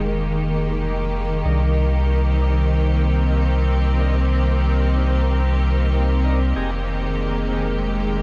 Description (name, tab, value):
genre	ambient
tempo	94 BPM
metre	4/4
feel	swing 57% on 16ths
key	F minor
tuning	A4 = 439 Hz
part	bright symphonic string section	sustained chords	0.0-8.2 s	Eb3 to G4	-26 LUFS	equal	none
part	warm sub bass	bass	0.0-8.2 s	F1 to C2	-21 LUFS	equal	none
part	drifting glass-harmonics texture	texture	0.1-8.2 s	Bb4	-37 LUFS	equal	chorus, built-in reverb
part	tonewheel organ	stabs	1.5-6.7 s	D4 to Bb4	-40 LUFS	equal	none
room	moderate huge ambient reverb, RT60 7.6 s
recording	dreamy mix soaked in reverb, vinyl crackle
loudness	-20 LUFS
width	mono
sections	0.0-8.2 A section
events	none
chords	0.0 Fm11; 1.5 Cm7; 6.6 Fm11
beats	0.18 0.81 | 1.45 2.09 2.73 3.37 | 4.01 4.64 5.28 5.92 | 6.56 7.20 7.84